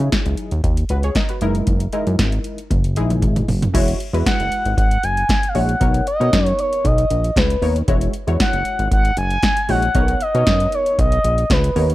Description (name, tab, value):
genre	early-eighties boogie funk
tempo	116 BPM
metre	4/4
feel	straight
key	B major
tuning	A4 = 441 Hz
part	funky polysynth comp	accompaniment	0.0-11.9 s	F#3 to D#5	-24 LUFS	left 1 dB	chorus
part	fat analog bass	bass	0.0-11.9 s	E1 to B2	-19 LUFS	equal	none
part	electro analog drum machine	drums	0.0-11.9 s	crash cymbal, hi-hat, kick drum, snare drum, toms	-20 LUFS	equal	overdrive
part	expressive synth lead	melody	4.3-11.9 s	B4 to G#5	-20 LUFS	equal	chorus
room	little or no reverb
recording	dry, close 1970s-style studio recording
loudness	-15 LUFS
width	side -16 dB against mid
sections	0.0-3.7 A section; 3.7-11.9 B section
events	drum fill 2.7-3.7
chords	0.0 C#m11; 1.4 F#13; 3.7 E69; 5.8 Bmaj9; 7.9 E69; 10.0 Bmaj9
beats	0.12 0.64 1.16 | 1.68 2.19 2.71 3.23 | 3.74 4.26 4.78 5.30 | 5.81 6.33 6.85 7.37 | 7.88 8.40 8.92 9.43 | 9.95 10.47 10.98 11.50